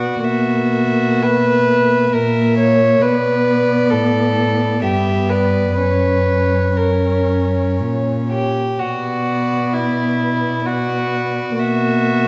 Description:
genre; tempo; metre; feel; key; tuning
classical, slow romantic movement for string quartet; 59-68 BPM; 3/4; rubato; B minor; A4 = 439 Hz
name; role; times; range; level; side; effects
warm violin; melody; 0.0-12.3 s; C#5 to E5; -28 LUFS; equal; none
warm violin; second line; 0.0-12.3 s; E4 to C#5; -21 LUFS; equal; none
dark viola; accompaniment; 0.0-12.3 s; A#3 to C#4; -23 LUFS; equal; none
dark cello; bass; 0.0-12.3 s; F#2 to B2; -22 LUFS; equal; none
room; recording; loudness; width
wet recital hall reverb, RT60 1.5 s; vinyl crackle, nothing above 7.8 kHz; -17 LUFS; mono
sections
0.0-12.3 A section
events
none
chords
0.2 F#7/B; 3.0 Bm; 4.8 Em/G; 5.8 F#; 8.8 Bm; 11.6 F#7/B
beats
| 0.24 1.22 2.13 | 3.02 3.92 4.83 | 5.80 6.80 7.81 | 8.79 9.74 10.66 | 11.58

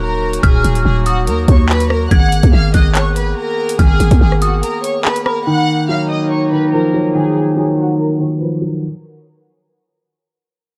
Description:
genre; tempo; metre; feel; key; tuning
hip hop, drill; 143 BPM; 4/4; half-time; Eb minor; A4 = 438 Hz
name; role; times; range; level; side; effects
rich studio violin section; melody; 0.0-8.8 s; Gb4 to Gb6; -23 LUFS; equal; low-pass filter
mellow woodwind section; sustained chords; 0.0-8.8 s; Eb3 to Ab4; -24 LUFS; equal; low-pass filter
growling 808-style bass; bass; 0.0-4.6 s; Eb1 to Eb2; -17 LUFS; equal; none
drill drum kit; drums; 0.3-5.4 s; handclaps, hi-hat, kick drum, rim click; -15 LUFS; equal; none
dark detuned synth bell; second line; 0.4-5.5 s; Cb6 to Ab6; -26 LUFS; equal; chorus, delay
dark baby grand piano; accompaniment; 5.5-8.8 s; Eb3 to Gb3; -17 LUFS; equal; low-pass filter
room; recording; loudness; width
small room ambience; dark, warm production; -14 LUFS; mono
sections
0.0-5.5 A section; 5.5-8.8 B section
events
break 4.6-5.5; filter sweep 5.5-8.8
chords
0.0 Ebmadd9; 2.1 Abmadd9; 5.5 Ebmadd9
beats
0.01 | 0.43 0.85 1.27 1.69 | 2.11 2.53 2.95 3.37 | 3.79 4.21 4.63 5.05 | 5.47 5.89 6.31 6.73 | 7.15 7.57 7.99 8.41

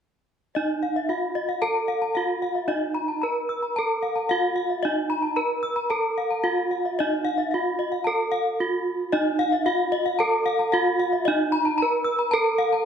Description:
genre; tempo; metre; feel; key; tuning
gamelan; 112 BPM; 4/4; straight; unclear; A4 = 438 Hz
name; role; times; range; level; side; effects
gamelan-type bronze metallophone; melody; 0.6-12.9 s; Eb4 to Cb5-40c; -24 LUFS; right 3 dB; none
gamelan-type bronze metallophone; arpeggios; 0.6-12.9 s; Eb5 to Fb6; -25 LUFS; left 4 dB; none
room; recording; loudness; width
wet recital hall reverb, RT60 1.7 s; none; -22 LUFS; side -7 dB against mid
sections
0.6-12.9 A section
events
none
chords
none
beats
| 0.55 1.09 1.62 2.16 | 2.70 3.23 3.77 4.30 | 4.84 5.37 5.91 6.45 | 6.98 7.52 8.05 8.59 | 9.12 9.66 10.20 10.73 | 11.27 11.80 12.34

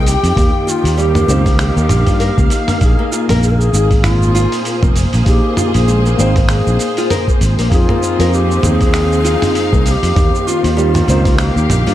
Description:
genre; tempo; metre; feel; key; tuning
organic downtempo; 98 BPM; 4/4; swing 57% on 16ths; unclear; A4 = 440 Hz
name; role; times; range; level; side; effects
breathy bright low ney; melody; 0.0-11.9 s; F4 to Bb4; -20 LUFS; equal; digital delay
felt-muted upright piano; accompaniment; 0.0-11.9 s; Bb3 to C5; -22 LUFS; left 4 dB; sidechain pumping, digital delay
clear studio string section; sustained chords; 0.0-11.9 s; Bb2 to G5; -21 LUFS; equal; sidechain pumping
nylon-string guitar; arpeggios; 0.0-11.9 s; G3 to Bb4; -22 LUFS; left 1 dB; digital delay
sustaining fretless electric bass; bass; 0.0-11.9 s; F1 to G2; -14 LUFS; equal; none
dusty soul sampler-style drum kit; drums; 0.1-11.9 s; cabasa, finger snaps, hi-hat, toms; -21 LUFS; right 1 dB; none
electronic kick drum; drums; 0.4-11.4 s; none; -14 LUFS; equal; none
twinkling granular texture; texture; 3.6-11.9 s; C4 to C5; -29 LUFS; equal; none
room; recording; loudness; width
light reverb, studio ambience; dark, warm production; -11 LUFS; side -13 dB against mid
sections
0.0-11.9 A section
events
none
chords
0.4 Eb7; 2.8 Bb5; 7.7 Fm7; 10.2 Eb7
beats
| 0.36 0.98 1.59 2.20 | 2.81 3.43 4.04 4.65 | 5.26 5.88 6.49 7.10 | 7.71 8.32 8.94 9.55 | 10.16 10.77 11.39

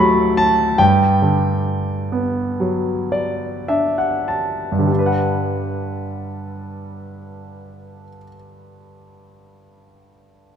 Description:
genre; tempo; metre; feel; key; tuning
classical, lyrical solo piano; 49-75 BPM; 4/4; rubato; G major; A4 = 440 Hz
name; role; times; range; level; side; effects
clear concert grand piano; solo; 0.0-10.6 s; D2 to C#6; -17 LUFS; equal; none
room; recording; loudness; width
moderate concert hall reverb, RT60 2.3 s; none; -16 LUFS; side -8 dB against mid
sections
0.0-4.9 A section; 4.9-9.7 B section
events
slowing down 0.0-4.9; grand piano fill 2.6-4.9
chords
0.0 D; 0.8 Gmaj7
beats
| 0.79 1.66 2.60 3.69 | 4.89 6.10 7.28 8.46

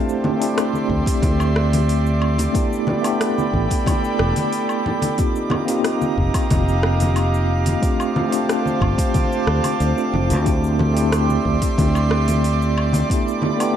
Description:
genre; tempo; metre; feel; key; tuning
sunset chillout; 91 BPM; 4/4; straight; D minor; A4 = 444 Hz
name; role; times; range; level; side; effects
tine electric piano; accompaniment; 0.0-13.8 s; A3 to A4; -22 LUFS; equal; fast stereo tremolo, auto-pan, low-pass filter, tape echo
airy breathy pad; sustained chords; 0.0-13.8 s; G4 to C6; -25 LUFS; right 1 dB; chorus
drifting glass-harmonics texture; texture; 0.2-13.8 s; D6; -31 LUFS; right 10 dB; chorus, built-in reverb
deep house drum kit; drums; 0.1-13.7 s; cabasa, hi-hat, rim click, woodblock; -28 LUFS; equal; overdrive, studio reverb
congas; percussion; 0.2-13.6 s; none; -25 LUFS; left 1 dB; none
fingered electric bass; bass; 0.9-13.0 s; E1 to D2; -19 LUFS; equal; none
electronic kick drum; drums; 0.9-13.2 s; none; -21 LUFS; equal; overdrive, studio reverb
room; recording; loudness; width
light reverb; dark, warm production; -17 LUFS; side -9 dB against mid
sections
0.0-13.8 A section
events
none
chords
0.0 D9sus4; 2.5 A9sus4; 5.2 F9sus4; 7.8 G9sus4; 10.5 D9sus4; 13.1 A9sus4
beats
0.57 1.23 1.89 | 2.55 3.21 3.87 4.53 | 5.19 5.85 6.50 7.17 | 7.82 8.48 9.14 9.80 | 10.46 11.12 11.78 12.44 | 13.10 13.76

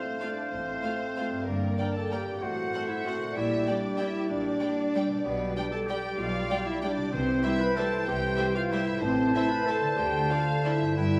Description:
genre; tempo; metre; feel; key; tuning
classical, orchestral ballroom waltz; 190 BPM; 3/4; uneven beats, rubato; C major from 5.2 s; A4 = 438 Hz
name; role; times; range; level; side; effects
rich chamber violin section; melody; 0.0-11.2 s; Bb4 to B5; -41 LUFS; equal; none
clear clarinet; second line; 0.0-11.2 s; Bb3 to B4; -39 LUFS; equal; none
silver concert flute; second line; 0.0-11.2 s; F5 to A5; -38 LUFS; equal; none
warm oboe; second line; 0.0-11.2 s; B4 to D5; -39 LUFS; equal; none
mellow bassoon; accompaniment; 0.0-11.2 s; D3 to Bb3; -38 LUFS; equal; none
mellow French horn section; sustained chords; 0.0-11.2 s; Bb3 to B4; -34 LUFS; equal; none
concert harp; arpeggios; 0.0-11.2 s; G2 to D5; -38 LUFS; equal; none
rich chamber violin section; second line; 0.2-10.7 s; C5 to G5; -41 LUFS; equal; none
warm chamber viola section; accompaniment; 0.2-10.7 s; G3 to Bb4; -41 LUFS; equal; none
rich chamber double bass section; bass; 0.5-11.2 s; G1 to D2; -40 LUFS; equal; none
rich symphonic cello section; bass; 0.5-11.2 s; D2 to C3; -40 LUFS; equal; none
timpani; percussion; 7.1-7.6, 11.0-11.2 s; G2 to C3; -40 LUFS; equal; none
room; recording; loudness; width
wet recital hall reverb, RT60 1.4 s; none; -28 LUFS; mono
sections
0.0-11.2 A section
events
timpani fill 11.0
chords
0.0 F/A; 1.5 Gm; 2.4 F#dim/A; 3.4 Gm/Bb; 5.2 G/B; 7.1 C; 9.0 Am; 10.0 Dm7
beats
0.22 | 0.53 0.84 1.17 | 1.48 1.79 2.12 | 2.43 2.74 3.06 | 3.37 3.68 4.00 | 4.31 4.62 4.94 | 5.25 5.56 5.88 | 6.19 6.50 6.83 | 7.14 7.45 7.78 | 8.08 8.39 8.72 | 9.03 9.35 9.68 | 9.98 10.30 10.64 | 10.97

